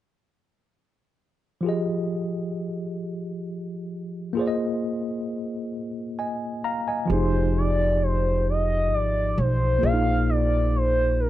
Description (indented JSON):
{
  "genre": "slow six-eight R&B",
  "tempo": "44 BPM (dotted quarters)",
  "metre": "6/8",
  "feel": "straight",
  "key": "F dorian",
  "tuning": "A4 = 440 Hz",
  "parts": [
    { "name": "tine electric piano", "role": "accompaniment", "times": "1.6-11.3 s", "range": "F3 to Bb5", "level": "-26 LUFS", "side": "equal", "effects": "overdrive, fast stereo tremolo" },
    { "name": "gliding portamento lead", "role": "melody", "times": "7.1-11.3 s", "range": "Bb4 to F5", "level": "-25 LUFS", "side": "equal", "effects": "chorus" },
    { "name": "upright bass", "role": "bass", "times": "7.1-11.3 s", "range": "F1 to B1", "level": "-23 LUFS", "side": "equal", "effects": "none" }
  ],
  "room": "little or no reverb",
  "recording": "dry, gritty hardware recording, nothing above 10.7 kHz",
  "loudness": "-22 LUFS",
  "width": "side -14 dB against mid",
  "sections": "1.6-7.1 A section; 7.1-11.3 B section",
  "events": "none",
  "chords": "1.6 Fm7; 4.4 Bb7sus4; 7.1 Fm7; 9.8 Bb7sus4",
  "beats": "| 1.63 3.00 | 4.36 5.72 | 7.09 8.45 | 9.81 11.18"
}